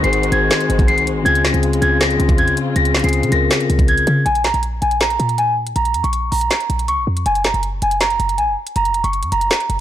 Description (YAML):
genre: hip hop, trap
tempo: 160 BPM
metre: 4/4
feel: half-time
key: unclear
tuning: A4 = 440 Hz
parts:
  - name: large celesta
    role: melody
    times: 0.0-9.8 s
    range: Ab5 to C7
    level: -18 LUFS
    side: right 1 dB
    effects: ping-pong delay
  - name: tine electric piano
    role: accompaniment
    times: 0.0-4.3 s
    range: Db3 to Bb4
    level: -19 LUFS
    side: left 4 dB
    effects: none
  - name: muted studio string section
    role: sustained chords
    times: 0.0-4.2 s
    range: Db3 to C5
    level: -26 LUFS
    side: left 1 dB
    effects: none
  - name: short 808-style bass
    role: bass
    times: 0.0-9.8 s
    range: F1 to Db3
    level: -20 LUFS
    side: equal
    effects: none
  - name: trap drum kit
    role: drums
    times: 0.0-9.8 s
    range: handclaps, hi-hat, kick drum, snare drum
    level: -19 LUFS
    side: equal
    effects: none
room: little or no reverb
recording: blown-out, overdriven recording, overdrive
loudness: -14 LUFS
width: side -11 dB against mid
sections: 0.0-4.3 A section; 4.3-9.8 B section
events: none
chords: 0.0 Ab7; 1.3 Dbmaj7; 4.3 N.C.; 7.3 Gb